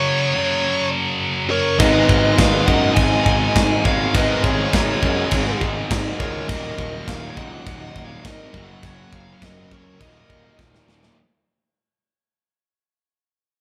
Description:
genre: heavy metal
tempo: 102 BPM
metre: 4/4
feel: straight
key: Eb minor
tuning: A4 = 440 Hz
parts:
  - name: high-gain lead guitar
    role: melody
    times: 0.0-10.6 s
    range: Db5 to Ab5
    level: -26 LUFS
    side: equal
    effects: distortion
  - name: scooped high-gain guitar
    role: riff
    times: 0.0-11.2 s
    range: Eb2 to Ab3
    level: -26 LUFS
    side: equal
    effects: distortion
  - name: high-gain lead guitar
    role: second line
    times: 1.5-10.6 s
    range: Ab4 to Eb5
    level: -30 LUFS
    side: equal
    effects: distortion
  - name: fuzz guitar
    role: riff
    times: 1.8-11.2 s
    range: Eb2 to Gb4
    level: -28 LUFS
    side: equal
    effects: distortion
  - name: tight distorted guitar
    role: riff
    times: 1.8-11.2 s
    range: Eb2 to Ab3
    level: -30 LUFS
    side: equal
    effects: distortion
  - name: fuzz picked electric bass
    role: bass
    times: 1.8-11.1 s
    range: Eb1 to Gb2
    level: -27 LUFS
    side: equal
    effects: overdrive
  - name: tight metal drum kit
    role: drums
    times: 1.8-11.2 s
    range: crash cymbal, kick drum, snare drum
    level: -24 LUFS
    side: equal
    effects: none
room: moderate large studio reverb, RT60 1.2 s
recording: band playing live in one room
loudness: -18 LUFS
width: mono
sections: 0.0-11.2 A section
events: fade-out 0.0-11.2; drum fill 10.6-11.2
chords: 0.0 Gb5; 1.8 Abm; 6.5 Ebm; 8.5 Gb; 10.0 Ebm

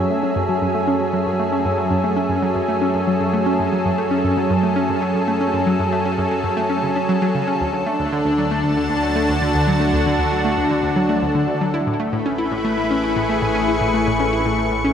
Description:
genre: ambient, sequencer-driven space music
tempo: 116 BPM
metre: 4/4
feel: straight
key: F# minor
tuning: A4 = 440 Hz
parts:
  - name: lush unison pad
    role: sustained chords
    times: 0.0-14.9 s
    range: D3 to C#6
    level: -19 LUFS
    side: equal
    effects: chorus
  - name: analog drone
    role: bass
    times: 0.7-14.9 s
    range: A1 to F#2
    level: -28 LUFS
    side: equal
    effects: chorus
  - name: analog pluck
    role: riff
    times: 0.1-14.9 s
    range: D2 to E4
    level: -22 LUFS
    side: equal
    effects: chorus, tape echo
room: wet plate reverb, RT60 2.8 s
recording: dreamy mix soaked in reverb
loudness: -17 LUFS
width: side -8 dB against mid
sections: 0.0-14.9 A section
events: none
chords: 0.0 F#m7; 7.6 D; 11.7 Amaj7

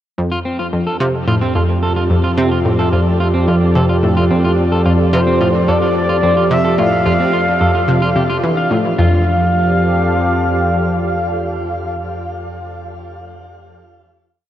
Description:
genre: ambient, sequencer-driven space music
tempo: 109 BPM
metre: 4/4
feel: straight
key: F major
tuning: A4 = 440 Hz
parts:
  - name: sweeping resonant pad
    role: sustained chords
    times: 0.2-11.9 s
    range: F3 to D5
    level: -19 LUFS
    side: right 1 dB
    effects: chorus, shimmer reverb
  - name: analog pluck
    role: riff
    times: 0.2-9.2 s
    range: F2 to E3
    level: -18 LUFS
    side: equal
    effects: chorus, tape echo
  - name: analog drone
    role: bass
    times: 1.1-10.6 s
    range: F2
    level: -19 LUFS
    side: equal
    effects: chorus
  - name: bubbling stepped-filter texture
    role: texture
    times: 0.2-9.0 s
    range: D4 to D5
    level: -32 LUFS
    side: right 1 dB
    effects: none
  - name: electric guitar at the edge of break-up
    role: arpeggios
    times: 0.3-9.2 s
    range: C4 to F5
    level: -22 LUFS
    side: right 1 dB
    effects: auto-pan, shimmer reverb, tape echo
  - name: expressive portamento lead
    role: melody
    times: 5.1-11.9 s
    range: C5 to F5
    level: -19 LUFS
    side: left 1 dB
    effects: chorus, shimmer reverb, tape echo
room: wet huge ambient reverb, RT60 8.3 s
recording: worn, warbling old tape, cassette tape, warbly pitch drift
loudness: -12 LUFS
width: side -11 dB against mid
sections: 0.2-9.0 A section; 9.0-11.2 final chord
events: none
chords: 0.2 F6

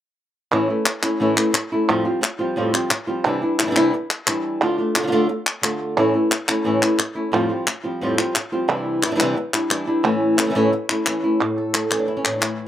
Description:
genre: flamenco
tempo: 176 BPM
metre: 4/4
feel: straight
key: unclear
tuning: A4 = 440 Hz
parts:
  - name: flamenco guitar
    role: melody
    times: 0.5-12.7 s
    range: F2 to A4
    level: -19 LUFS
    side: equal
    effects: slapback echo
  - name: palmas hand claps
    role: percussion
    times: 0.5-12.6 s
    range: none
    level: -21 LUFS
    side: equal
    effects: none
room: little or no reverb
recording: recorded outdoors, with no room sound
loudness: -18 LUFS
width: side -11 dB against mid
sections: 0.5-11.4 A section; 11.4-12.7 B section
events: none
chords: 0.5 A; 1.9 Fadd9; 3.2 Cadd9; 4.6 Dm; 6.0 A; 7.3 Fadd9; 8.7 Cadd9; 10.0 A; 11.4 A5

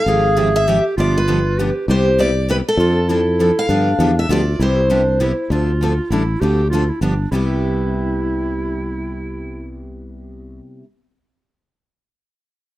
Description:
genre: acoustic string swing (jazz manouche)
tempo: 198 BPM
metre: 3/4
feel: swing 58% on 8ths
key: C major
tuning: A4 = 440 Hz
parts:
  - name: picked steel-string acoustic guitar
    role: melody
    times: 0.0-5.3 s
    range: A4 to F5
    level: -18 LUFS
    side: left 1 dB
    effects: plate reverb, tape echo
  - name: breathy clarinet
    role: second line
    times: 0.0-9.9 s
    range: D4 to Ab4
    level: -22 LUFS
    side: right 3 dB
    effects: none
  - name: picked steel-string acoustic guitar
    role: accompaniment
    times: 0.1-10.9 s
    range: C3 to A4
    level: -27 LUFS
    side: left 4 dB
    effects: none
  - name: picked steel-string acoustic guitar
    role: accompaniment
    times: 0.1-10.8 s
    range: C3 to A4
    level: -26 LUFS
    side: right 5 dB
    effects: none
  - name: sustaining fretless electric bass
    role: bass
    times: 0.1-10.6 s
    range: G1 to G2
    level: -19 LUFS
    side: left 1 dB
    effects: none
room: light reverb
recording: rough home demo mix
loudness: -15 LUFS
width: side -15 dB against mid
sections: 0.0-5.5 A section; 5.5-7.3 B section; 7.3-9.1 C section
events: none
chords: 0.1 Fmadd9/Ab; 1.0 G7; 1.9 Cmaj7; 2.8 F6; 3.7 G7; 4.6 Cmaj7; 5.5 Dm7; 6.1 A7sus4; 6.4 Dm7; 7.0 G7; 7.3 Cmaj7

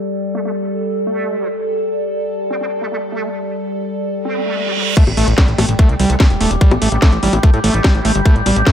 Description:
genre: psychedelic trance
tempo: 146 BPM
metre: 4/4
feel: straight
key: A minor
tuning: A4 = 440 Hz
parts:
  - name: overtone-sweeping drone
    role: sustained chords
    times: 0.0-8.7 s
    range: G3 to A4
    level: -20 LUFS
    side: equal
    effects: chorus, built-in reverb, sidechain pumping
  - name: vowel-sweep wobble bass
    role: second line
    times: 0.3-8.0 s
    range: G3 to C4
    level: -30 LUFS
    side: right 3 dB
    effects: chorus, sidechain pumping, high-pass filter, tape echo
  - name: reverse cymbal and impact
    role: sound effects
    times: 4.3-6.6 s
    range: none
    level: -23 LUFS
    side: right 2 dB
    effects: none
  - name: screaming distorted acid line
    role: riff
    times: 5.0-8.7 s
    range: G3 to A3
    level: -19 LUFS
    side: right 1 dB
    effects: distortion, chorus, auto-pan, sidechain pumping, digital delay
  - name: drum and bass drum kit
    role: drums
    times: 5.0-8.7 s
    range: bongos, crash cymbal, hi-hat, snare drum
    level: -20 LUFS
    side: left 1 dB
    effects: none
  - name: electronic kick drum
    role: drums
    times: 5.0-8.7 s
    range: none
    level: -10 LUFS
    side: equal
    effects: none
  - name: fat analog bass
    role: bass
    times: 5.1-8.6 s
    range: E1 to A2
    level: -17 LUFS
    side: equal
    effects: tube saturation
room: light reverb, digital ambience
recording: low-pass filter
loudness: -13 LUFS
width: side -9 dB against mid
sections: 0.0-5.0 A section; 5.0-8.7 B section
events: filter sweep on synth drone 0.0-5.0; filter sweep 0.0-5.0; reverse cymbal 4.3-5.0; drop 5.0-8.7; impact 5.0-6.6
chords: 0.0 Gsus2; 5.0 A5

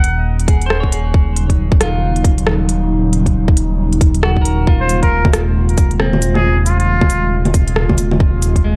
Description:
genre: future garage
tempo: 136 BPM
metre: 4/4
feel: swing 61% on 16ths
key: Eb dorian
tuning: A4 = 445 Hz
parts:
  - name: trumpet with straight mute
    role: melody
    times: 0.0-0.3, 4.8-7.4 s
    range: F4 to Gb5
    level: -25 LUFS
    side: equal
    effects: analog delay
  - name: dark detuned saw bass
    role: bass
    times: 0.0-8.8 s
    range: Eb1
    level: -18 LUFS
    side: equal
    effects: sidechain pumping
  - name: organic electronic drum kit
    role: drums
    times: 0.0-8.6 s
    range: bongos, cabasa, hi-hat, rim click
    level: -21 LUFS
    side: equal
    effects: none
  - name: clean electric guitar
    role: accompaniment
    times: 0.5-8.8 s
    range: Ab3 to Db5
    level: -28 LUFS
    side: equal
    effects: spring reverb, sidechain pumping, analog delay
  - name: electronic kick drum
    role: drums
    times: 0.5-8.6 s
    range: none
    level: -15 LUFS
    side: equal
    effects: none
  - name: airy breathy pad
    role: sustained chords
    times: 1.1-8.8 s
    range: C3 to F4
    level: -23 LUFS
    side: equal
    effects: chorus, sidechain pumping
room: light reverb, digital ambience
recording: none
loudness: -14 LUFS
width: mono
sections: 0.0-8.8 A section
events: none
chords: 0.0 Ebm7; 4.7 Fm/Eb

